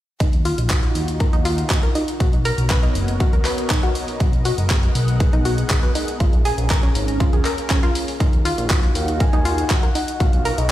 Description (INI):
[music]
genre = progressive house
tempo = 120 BPM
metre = 4/4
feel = straight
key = Eb minor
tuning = A4 = 440 Hz
[part]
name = lush unison pad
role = sustained chords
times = 0.2-10.7 s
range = B3 to A#5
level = -28 LUFS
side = equal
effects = chorus, phaser, sidechain pumping
[part]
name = analog pluck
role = arpeggios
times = 0.2-10.5 s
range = Db4 to B4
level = -26 LUFS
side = equal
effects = chorus, sidechain pumping, tape echo
[part]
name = fat analog bass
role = bass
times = 0.2-10.7 s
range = F#1 to Eb2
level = -22 LUFS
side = equal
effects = sidechain pumping
[part]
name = deep house drum kit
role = drums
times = 0.2-10.7 s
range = handclaps, hi-hat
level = -26 LUFS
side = equal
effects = none
[part]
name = electronic kick drum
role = drums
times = 0.2-10.3 s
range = none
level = -17 LUFS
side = equal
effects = overdrive
[part]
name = soft octave-layered synth lead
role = melody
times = 9.0-10.7 s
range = D#5 to Ab5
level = -27 LUFS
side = left 2 dB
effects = chorus, tremolo, sidechain pumping, tape echo
[sound]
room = light reverb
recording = played on a big sound system in a bare room, large studio reverb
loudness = -16 LUFS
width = side -14 dB against mid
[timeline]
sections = 0.2-10.7 A section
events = filter sweep on analog synth pad 0.2-10.7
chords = 0.2 Ebmadd9; 2.2 Bmaj7; 4.2 Abm7; 6.2 Bbm7; 8.2 Ebmadd9; 10.2 Bmaj7